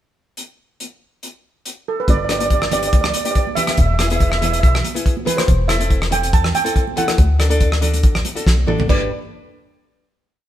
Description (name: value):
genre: calypso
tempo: 141 BPM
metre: 4/4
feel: swing 53% on 16ths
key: G major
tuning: A4 = 444 Hz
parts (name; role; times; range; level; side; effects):
- warm soul drum kit; drums; 0.4-9.0 s; crash cymbal, hi-hat, kick drum, rim click, snare drum, toms; -18 LUFS; equal; none
- steel pan; melody; 1.9-9.1 s; A4 to A5; -21 LUFS; right 4 dB; none
- plucky analog bass; bass; 2.1-9.1 s; E1 to E2; -19 LUFS; equal; none
- nylon-string guitar; accompaniment; 2.3-9.1 s; B3 to B4; -24 LUFS; left 2 dB; none
- congas; percussion; 2.7-9.1 s; none; -29 LUFS; right 6 dB; none
room: moderate stone room reverb, RT60 1.2 s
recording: band playing live in one room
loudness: -14 LUFS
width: side -12 dB against mid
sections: 0.4-2.1 pickup bar; 2.1-8.9 verse; 8.9-10.5 final chord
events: drum fill 8.5-8.9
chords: 0.4 N.C.; 2.1 G; 3.8 E; 5.5 Am/E; 7.2 D; 8.9 G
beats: | 0.37 0.79 1.22 1.65 | 2.08 2.50 2.93 3.35 | 3.78 4.21 4.63 5.06 | 5.48 5.91 6.33 6.76 | 7.19 7.61 8.04 8.46 | 8.89